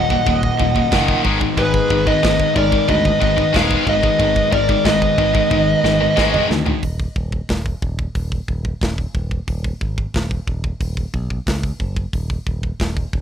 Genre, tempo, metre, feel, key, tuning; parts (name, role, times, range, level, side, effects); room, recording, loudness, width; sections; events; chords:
heavy metal; 91 BPM; 4/4; straight; A4 = 438 Hz
bluesy overdriven lead guitar; melody; 0.0-6.5 s; Cb5 to Gb5; -18 LUFS; equal; distortion
high-gain lead guitar; second line; 0.0-6.5 s; Ab4 to Eb5; -27 LUFS; right 4 dB; distortion, ping-pong delay
chamber organ, sparkling flutes; sustained chords; 0.0-6.8 s; Bb2 to Bb5; -31 LUFS; right 2 dB
fuzz guitar; riff; 0.0-6.5 s; Eb2 to Ab3; -25 LUFS; right 1 dB; distortion
heavy high-gain guitar; riff; 0.0-6.8 s; Eb2 to Ab3; -25 LUFS; right 11 dB; distortion
tight distorted guitar; riff; 0.0-6.8 s; Eb2 to Ab3; -21 LUFS; left 12 dB; distortion
modern bright picked electric bass; bass; 0.0-13.2 s; Eb1 to D2; -23 LUFS; equal
tight metal drum kit; drums; 0.1-13.2 s; china cymbal, hi-hat, kick drum, snare drum, toms; -22 LUFS; equal
little or no reverb; rough home demo mix; -16 LUFS; side -9 dB against mid
0.0-6.8 A section; 6.8-13.2 B section
drum fill 5.5-6.8
0.0 Ebm; 1.3 Abm; 6.8 N.C.